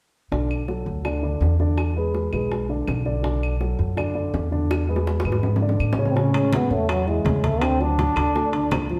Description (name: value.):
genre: Afro-Cuban jazz.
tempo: 164 BPM.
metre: 4/4.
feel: straight.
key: A major.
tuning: A4 = 440 Hz.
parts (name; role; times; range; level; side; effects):
dark upright piano; accompaniment; 0.3-9.0 s; C#3 to D5; -29 LUFS; equal; none.
upright bass; bass; 0.3-9.0 s; B1 to A2; -26 LUFS; equal; none.
bongos; percussion; 0.3-9.0 s; none; -34 LUFS; equal; none.
claves; percussion; 0.5-8.9 s; none; -40 LUFS; equal; none.
breathy trombone; melody; 6.1-8.9 s; F#3 to D4; -25 LUFS; equal; none.
congas; percussion; 6.2-9.0 s; none; -31 LUFS; equal; none.
timbales; percussion; 6.3-8.9 s; none; -34 LUFS; equal; none.
room: wet large studio reverb, RT60 1.3 s.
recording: heard from further back in the room.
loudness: -23 LUFS.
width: mono.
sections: 0.3-6.2 A section; 6.2-9.0 B section.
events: drum fill 4.7-6.2.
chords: 0.3 Bm7; 1.8 E7; 3.2 Bm7; 4.7 E7; 6.2 Amaj7; 7.6 D.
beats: | 0.32 0.69 1.05 1.42 | 1.78 2.15 2.52 2.88 | 3.25 3.61 3.98 4.34 | 4.71 5.07 5.44 5.80 | 6.17 6.53 6.90 7.26 | 7.63 7.99 8.36 8.72.